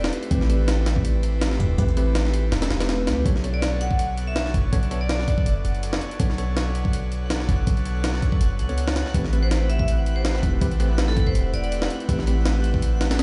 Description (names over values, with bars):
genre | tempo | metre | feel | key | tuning
drum and bass, jungle | 163 BPM | 4/4 | swing 54% on 16ths | unclear | A4 = 440 Hz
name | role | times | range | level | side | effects
vibraphone with hard mallets | melody | 0.0, 3.5-5.5, 9.4-11.8 s | A4 to F#5 | -35 LUFS | equal | dub echo
airy breathy pad | sustained chords | 0.0-13.2 s | A3 to D5 | -34 LUFS | equal | chorus
warm 808-style bass | bass | 0.0-13.2 s | E1 to D2 | -25 LUFS | equal | none
breakbeat sampler-style drum kit | drums | 0.0-13.2 s | hi-hat, kick drum, snare drum | -26 LUFS | equal | none
bell-like tine electric piano | stabs | 0.3-6.4, 8.7-12.3 s | A3 to C#5 | -35 LUFS | equal | dub echo
twinkling granular texture | texture | 4.1-13.2 s | F#5 | -42 LUFS | equal | built-in reverb
room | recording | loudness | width
light reverb | played on a big sound system in a bare room, large studio reverb, nothing above 10.9 kHz | -22 LUFS | mono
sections
0.0-13.2 A section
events
none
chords
0.0 Am9; 3.3 Bm9; 9.1 Am9